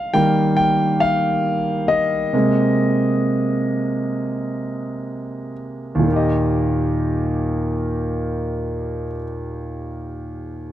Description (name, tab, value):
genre	pop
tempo	62-70 BPM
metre	4/4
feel	straight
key	Eb major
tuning	A4 = 440 Hz
part	clear concert grand piano	accompaniment	0.0-10.7 s	Eb2 to G5	-18 LUFS	equal	none
room	moderate studio reverb, RT60 0.6 s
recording	dry, close 1970s-style studio recording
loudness	-18 LUFS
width	side -12 dB against mid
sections	0.0-6.1 A section; 6.1-10.0 B section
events	slowing down 0.0-6.1; grand piano solo 0.0-6.1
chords	0.0 Eb; 2.3 Abadd9; 6.1 Eb